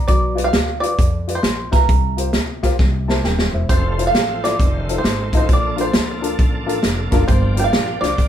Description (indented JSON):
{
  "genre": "uptempo gospel",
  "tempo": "134 BPM",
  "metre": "4/4",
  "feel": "swing 65% on 8ths",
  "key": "F major",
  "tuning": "A4 = 440 Hz",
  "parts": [
    { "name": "dark upright piano", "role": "accompaniment", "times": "0.0-8.1 s", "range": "G2 to Bb5", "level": "-24 LUFS", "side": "left 4 dB", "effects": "none" },
    { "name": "bluegrass banjo", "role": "melody", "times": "0.1-8.3 s", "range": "Bb4 to G5", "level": "-22 LUFS", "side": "right 3 dB", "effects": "none" },
    { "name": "upright bass", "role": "bass", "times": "0.1-8.3 s", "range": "Eb1 to F2", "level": "-23 LUFS", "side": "equal", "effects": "none" },
    { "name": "natural country drum kit", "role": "drums", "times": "0.1-8.3 s", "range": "hi-hat, kick drum, snare drum", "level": "-18 LUFS", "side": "equal", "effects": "none" },
    { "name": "bright tonewheel organ", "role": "sustained chords", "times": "3.7-8.3 s", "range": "Eb3 to A4", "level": "-27 LUFS", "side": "right 2 dB", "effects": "slow rotary speaker, chorus vibrato" }
  ],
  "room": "moderate studio reverb, RT60 0.6 s",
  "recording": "band playing live in one room",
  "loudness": "-15 LUFS",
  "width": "side -10 dB against mid",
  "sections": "0.0-8.3 A section",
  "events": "drum fill 2.8-3.7; upright piano fill 2.8-3.7",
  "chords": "0.1 G7/B; 1.9 C7sus4; 2.8 C7; 3.7 Fmaj7; 4.6 F7; 5.5 Bbmaj7; 7.3 Gm7",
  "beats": "| 0.09 0.54 0.99 1.44 | 1.89 2.34 2.79 3.24 | 3.69 4.14 4.59 5.04 | 5.49 5.94 6.39 6.84 | 7.28 7.73 8.18"
}